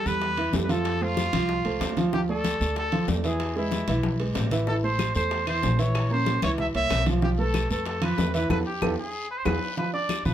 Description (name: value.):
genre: latin, salsa.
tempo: 188 BPM.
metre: 4/4.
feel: straight.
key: A minor.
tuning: A4 = 440 Hz.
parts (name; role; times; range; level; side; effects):
clear trumpet; melody; 0.0-10.3 s; E4 to E5; -29 LUFS; equal; none.
dark grand piano; accompaniment; 0.1-10.3 s; E3 to D6; -27 LUFS; right 2 dB; none.
upright bass; bass; 0.1-10.3 s; A1 to B2; -28 LUFS; equal; none.
congas; percussion; 0.1-10.3 s; none; -32 LUFS; left 3 dB; none.
guiro; percussion; 0.1-10.3 s; none; -40 LUFS; left 5 dB; none.
bongos; percussion; 0.2-10.3 s; none; -35 LUFS; left 6 dB; none.
timbales; percussion; 0.2-10.3 s; none; -37 LUFS; right 5 dB; none.
claves; percussion; 5.0-10.3 s; none; -37 LUFS; left 5 dB; none.
room: moderate studio ambience, RT60 0.5 s.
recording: none.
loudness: -23 LUFS.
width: side -10 dB against mid.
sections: 0.0-9.8 A section.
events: drum fill 4.0-4.7, 9.0-9.8; band accent 8.5-9.8.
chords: 0.0 A5; 0.9 F; 2.1 Dmadd9; 3.4 E; 4.7 Am; 5.9 C7b9; 7.2 G13 (rootless); 8.5 Esus4; 9.1 E; 9.8 G7 (rootless).